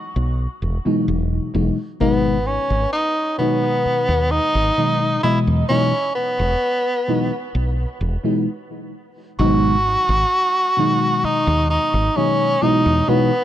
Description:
vaporwave; 65 BPM; 4/4; straight; A4 = 442 Hz
woody fretless electric bass; bass; 0.2-13.0 s; E1 to E2; -20 LUFS; equal; tube saturation
mellow FM electric piano; accompaniment; 0.8-13.3 s; B2 to D#5; -20 LUFS; left 1 dB; phaser, wide subtle chorus, cassette tape, analog delay
breathy tenor saxophone; melody; 2.0-13.4 s; B3 to F#4; -19 LUFS; equal; tape echo
small room ambience; dry, gritty hardware recording; -16 LUFS; side -12 dB against mid
0.0-9.4 A section; 9.4-13.4 B section
stop 8.5-9.4
0.0 Emaj9; 2.0 G#m7; 5.2 Emaj9; 9.4 G#m7; 12.6 Emaj9

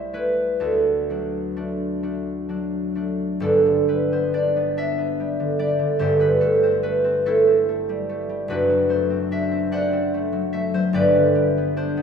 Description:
classical, solo harp piece; 40-51 BPM (dotted quarters); 6/8; rubato; G major; A4 = 440 Hz
concert harp; solo; 0.0-12.0 s; F#1 to G5; -19 LUFS; equal
wet scoring stage reverb, RT60 2.0 s; recorded in a church or concert hall; -19 LUFS; side -7 dB against mid
0.0-3.4 A section; 3.4-12.0 B section
0.0 Am7/C; 0.6 D; 3.4 G; 6.0 Am7/G; 8.5 D7/F#; 10.9 G

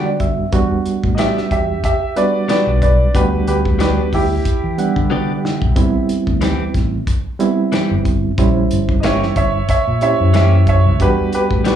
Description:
straight-eighth soul blues; 92 BPM; 4/4; swing 55% on 16ths; E minor; A4 = 440 Hz
bright reed electric piano; accompaniment; 0.0-11.8 s; G3 to F#5; -20 LUFS; right 5 dB; fast tremolo, slapback echo
direct-recorded clean electric guitar; stabs; 0.0-11.8 s; E3 to G4; -23 LUFS; left 9 dB; slapback echo
fingered electric bass; bass; 0.0-11.8 s; G1 to E3; -17 LUFS; left 1 dB
warm soul drum kit; drums; 0.2-11.8 s; hi-hat, kick drum, snare drum, toms; -20 LUFS; equal
clear upright piano; second line; 1.1-11.8 s; E4 to E5; -18 LUFS; right 1 dB; slapback echo
light reverb; live gig heard through the venue's PA, club reverb, small room reverb; -13 LUFS; side -9 dB against mid
0.0-11.8 A section
reed electric piano fill 0.0-0.5; upright piano solo 0.0-11.8; drum fill 5.1-5.8
0.0 Em9; 5.8 Am9; 8.4 A#dim7; 11.0 Em9

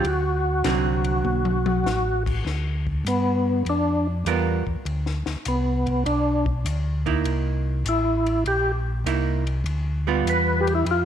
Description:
soul jazz organ trio; 100 BPM; 4/4; swing 68% on 8ths; A4 = 440 Hz
percussive tonewheel organ; melody; 0.0-11.1 s; B3 to B4; -23 LUFS; equal; overdrive, chorus vibrato, slow rotary speaker
archtop guitar, miked and amplified; accompaniment; 0.0-10.8 s; D3 to A#4; -26 LUFS; right 9 dB
mellow tonewheel organ; bass; 0.0-11.1 s; A1 to G2; -24 LUFS; equal; slow rotary speaker
compact cocktail drum kit; drums; 0.0-11.1 s; crash cymbal, hi-hat, kick drum, ride cymbal, snare drum, toms; -32 LUFS; left 5 dB
moderate echo chamber reverb, RT60 1.4 s, small room ambience; 1960s-style stereo; -21 LUFS; side -9 dB against mid
0.0-2.5 A section; 2.5-11.1 B section
drum fill 1.3-1.9; tonewheel organ solo 2.5-11.1
0.0 D7; 2.5 G7; 7.3 C7#9; 9.7 G7

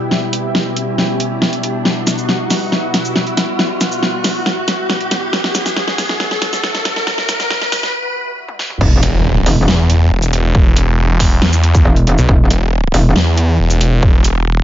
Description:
heavy wobble dubstep; 138 BPM; 4/4; half-time; E minor; A4 = 440 Hz
lush unison pad; sustained chords; 0.0-8.8 s; B2 to G4; -21 LUFS; equal; chorus, sidechain pumping
riser and impact; sound effects; 0.0-10.5 s; -21 LUFS; equal
dubstep drum kit; drums; 0.1-14.3 s; crash cymbal, hi-hat, shaker, snare drum, toms; -17 LUFS; equal
metallic wobble bass; bass; 8.8-13.1 s; E1; -12 LUFS; equal; chorus, overdrive
electronic kick drum; drums; 8.8-14.1 s; -12 LUFS; equal
snarling distorted saw bass; bass; 9.0-14.6 s; E1 to E2; -12 LUFS; equal; overdrive
light reverb; high-pass filter, nothing above 7.5 kHz; -12 LUFS; side -12 dB against mid
0.0-8.8 A section; 8.8-14.6 B section
build-up 0.0-8.8; drum fill 0.0-7.9, 8.5-8.8; riser 0.0-7.9; filter sweep 0.0-8.8; break 7.9-8.8; drop 8.8-14.6; impact 8.8-10.5
0.0 Em; 8.8 N.C.

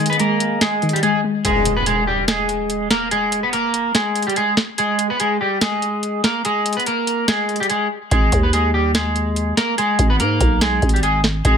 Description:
hip hop, trap; 144 BPM; 4/4; half-time; G# harmonic minor; A4 = 441 Hz
electric guitar at the edge of break-up; melody; 0.0-11.6 s; G3 to B4; -18 LUFS; equal; wide subtle chorus, low-pass filter
soft round pluck; accompaniment; 0.0-1.5 s; D#3 to G#3; -21 LUFS; left 2 dB; chorus, low-pass filter
hollow flute section; sustained chords; 0.0-1.4 s; G#4 to G#5; -29 LUFS; left 2 dB; low-pass filter
booming analog drum machine; drums; 0.1-11.6 s; hi-hat, kick drum, snare drum; -19 LUFS; equal
impact; sound effects; 1.4-3.1 s; -25 LUFS; equal
growling 808-style bass; bass; 8.1-11.6 s; G#1 to G#2; -19 LUFS; equal
light reverb, digital ambience; -16 LUFS; side -7 dB against mid
0.0-1.4 A section; 1.4-11.6 B section
kick muted 1.4-8.1; impact 1.4-3.1
0.0 G#5

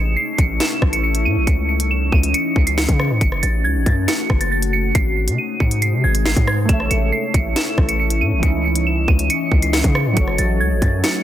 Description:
hip hop, drill; 138 BPM; 4/4; half-time; C# harmonic minor; A4 = 442 Hz
glassy synth bell; melody; 0.0-11.2 s; G#6 to E7; -22 LUFS; right 2 dB; chorus
glassy FM pad; sustained chords; 0.0-11.2 s; B#2 to D#5; -25 LUFS; left 3 dB; ensemble chorus, built-in reverb
hard-hitting 808-style bass; bass; 0.0-11.0 s; F#1 to C#3; -20 LUFS; equal
drill drum kit; drums; 0.4-11.1 s; hi-hat, kick drum, rim click, snare drum; -18 LUFS; equal
warbly lo-fi synth keys; accompaniment; 6.7-11.2 s; E3 to E5; -24 LUFS; right 3 dB; chorus
digital ambience; dense, heavily limited modern master; -15 LUFS; side -12 dB against mid
0.0-11.2 A section
0.0 A; 1.5 C#madd9; 3.2 F#m; 5.0 G#; 6.7 A; 8.4 C#madd9; 10.2 F#m

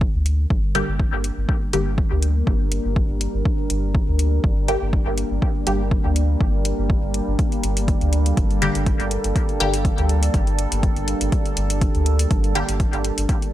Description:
dub techno; 122 BPM; 4/4; swing 54% on 16ths; G minor; A4 = 440 Hz
deep dark ambient pad; sustained chords; 0.4-13.5 s; G3 to Bb4; -27 LUFS; right 1 dB; chorus, built-in reverb, sidechain pumping
soft dub sub bass; bass; 0.0-13.3 s; G1 to D2; -22 LUFS; equal; sidechain pumping
electronic kick drum; drums; 0.0-13.4 s; -21 LUFS; equal; overdrive
electronic hi-hat; drums; 0.3-13.5 s; -29 LUFS; left 2 dB; overdrive
filtered dub chord stab; stabs; 0.7-12.8 s; D3 to G4; -25 LUFS; left 1 dB; phaser, sidechain pumping, dub echo
little or no reverb; -18 LUFS; side -13 dB against mid
0.0-13.5 A section
0.0 Gm

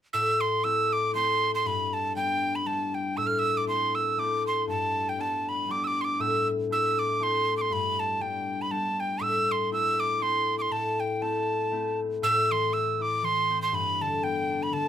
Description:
celtic folk; 119 BPM; 3/4; swing 55% on 8ths; A minor; A4 = 439 Hz
breathy mid whistle; melody; 0.1-14.9 s; G5 to F6; -26 LUFS; right 2 dB
concert harp; accompaniment; 0.1-14.9 s; G2 to E4; -30 LUFS; left 4 dB
light reverb; close, detailed microphones; -24 LUFS; side -10 dB against mid
0.1-12.2 A section; 12.2-14.9 A section
0.1 Am; 1.7 G; 3.2 Am; 4.7 G; 6.2 Am; 7.7 G; 9.2 Am; 13.7 G

